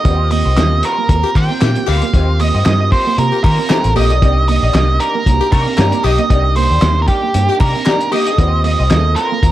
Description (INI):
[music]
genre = funk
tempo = 115 BPM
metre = 4/4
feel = swing 56% on 16ths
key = unclear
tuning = A4 = 439 Hz
[part]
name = octave-fuzz lead guitar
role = melody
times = 0.0-9.5 s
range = G4 to G5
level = -17 LUFS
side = right 3 dB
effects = distortion
[part]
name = semi-hollow electric guitar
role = accompaniment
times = 0.0-9.4 s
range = Bb3 to Eb5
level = -26 LUFS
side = left 6 dB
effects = wah
[part]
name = mellow electric guitar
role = riff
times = 0.0-9.5 s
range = G3 to C4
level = -24 LUFS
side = right 9 dB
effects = lush chorus
[part]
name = dark upright piano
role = stabs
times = 0.0-9.5 s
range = Bb3 to Bb4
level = -24 LUFS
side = right 4 dB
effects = none
[part]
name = vintage muted fingered electric bass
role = bass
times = 0.1-9.5 s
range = A1 to Eb3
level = -15 LUFS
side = equal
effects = none
[part]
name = cloth-damped thuddy drum kit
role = drums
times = 0.1-9.5 s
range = handclaps, hi-hat, kick drum, snare drum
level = -17 LUFS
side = left 1 dB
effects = none
[part]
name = group handclap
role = percussion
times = 0.6-9.0 s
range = none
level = -33 LUFS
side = left 2 dB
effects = none
[part]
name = growling tenor saxophone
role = second line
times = 1.2-8.5 s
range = G4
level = -22 LUFS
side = left 8 dB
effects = none
[sound]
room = light reverb, small room ambience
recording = dark, warm production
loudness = -11 LUFS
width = side -14 dB against mid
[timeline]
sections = 0.0-9.5 A section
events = none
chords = 0.1 Eb6; 4.2 Cm9; 8.4 Eb6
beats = | 0.05 0.57 1.09 1.61 | 2.14 2.66 3.18 3.70 | 4.22 4.74 5.26 5.78 | 6.30 6.82 7.34 7.87 | 8.39 8.91 9.43